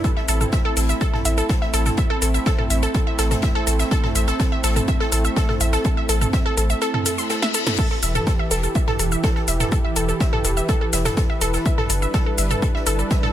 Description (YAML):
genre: melodic techno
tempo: 124 BPM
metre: 4/4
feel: straight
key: A minor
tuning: A4 = 439 Hz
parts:
  - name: warm analog pad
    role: sustained chords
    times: 0.0-13.3 s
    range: E3 to B4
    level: -27 LUFS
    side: right 2 dB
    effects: chorus, sidechain pumping
  - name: wide unison pluck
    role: arpeggios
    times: 0.0-13.3 s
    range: A4 to C6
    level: -24 LUFS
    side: right 1 dB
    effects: sidechain pumping, dub echo
  - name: deep house drum kit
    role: drums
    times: 0.0-13.3 s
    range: crash cymbal, hi-hat, shaker, snare drum, toms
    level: -26 LUFS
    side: equal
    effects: overdrive
  - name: electronic kick drum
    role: drums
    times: 0.0-13.2 s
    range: none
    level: -21 LUFS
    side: equal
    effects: none
  - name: open jazz drum kit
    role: drums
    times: 0.0-13.3 s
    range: hi-hat, snare drum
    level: -36 LUFS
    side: left 3 dB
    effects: sidechain pumping on hats, high-pass filter on hats, high-pass filter on snare, high-pass filter on room
  - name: round analog bass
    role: bass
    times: 0.3-13.0 s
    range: E1 to A1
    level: -22 LUFS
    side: equal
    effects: sidechain pumping
  - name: reverse cymbal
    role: sound effects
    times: 7.0-7.8 s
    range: none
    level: -31 LUFS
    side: left 7 dB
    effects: none
room: little or no reverb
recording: none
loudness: -18 LUFS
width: side -12 dB against mid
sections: 0.0-13.3 A section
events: kick drops out 6.8-7.8; reverse cymbal 7.0-7.8; drum fill 7.4-7.8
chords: 0.0 Am; 7.8 Em; 11.7 G6